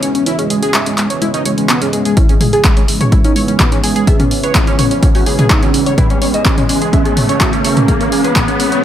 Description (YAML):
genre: melodic techno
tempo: 126 BPM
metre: 4/4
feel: straight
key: C# minor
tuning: A4 = 440 Hz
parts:
  - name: fat analog lead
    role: melody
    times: 0.0-8.7 s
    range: G#3 to D#5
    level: -18 LUFS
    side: equal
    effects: wide subtle chorus, sidechain pumping, dub echo
  - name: sweeping resonant pad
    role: sustained chords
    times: 0.0-8.8 s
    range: C#3 to F#4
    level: -24 LUFS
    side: equal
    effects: chorus, sidechain pumping
  - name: tight sequenced synth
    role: arpeggios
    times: 0.0-8.8 s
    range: C#4 to E5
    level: -21 LUFS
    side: right 1 dB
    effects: chorus, sidechain pumping, digital delay
  - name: brassy analog pad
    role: stabs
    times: 0.0-8.8 s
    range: E3 to C#4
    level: -23 LUFS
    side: right 4 dB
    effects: chorus, sidechain pumping, digital delay
  - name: punchy analog drum machine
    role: drums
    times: 0.0-8.8 s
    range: handclaps, hi-hat, toms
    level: -17 LUFS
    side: equal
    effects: overdrive, studio reverb
  - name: deep dark ambient pad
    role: texture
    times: 0.0-8.8 s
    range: C#4 to E5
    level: -24 LUFS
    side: right 1 dB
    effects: chorus, built-in reverb, sidechain pumping
  - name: dark detuned synth bell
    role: second line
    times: 2.2-8.7 s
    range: C#4 to D#5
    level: -24 LUFS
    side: right 2 dB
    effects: none
  - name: electronic kick drum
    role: drums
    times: 2.2-8.5 s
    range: none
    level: -13 LUFS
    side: equal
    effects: studio reverb
  - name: riser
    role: sound effects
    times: 4.4-8.8 s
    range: none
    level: -21 LUFS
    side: left 1 dB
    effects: none
room: light reverb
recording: none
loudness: -10 LUFS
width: side -10 dB against mid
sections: 0.0-2.2 A section; 2.2-8.8 B section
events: filter sweep on analog synth lead 0.0-2.2, 2.2-8.8; build-up 2.2-8.8; filter sweep on analog synth pad 2.2-8.8; riser 4.4-8.8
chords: 0.0 C#m7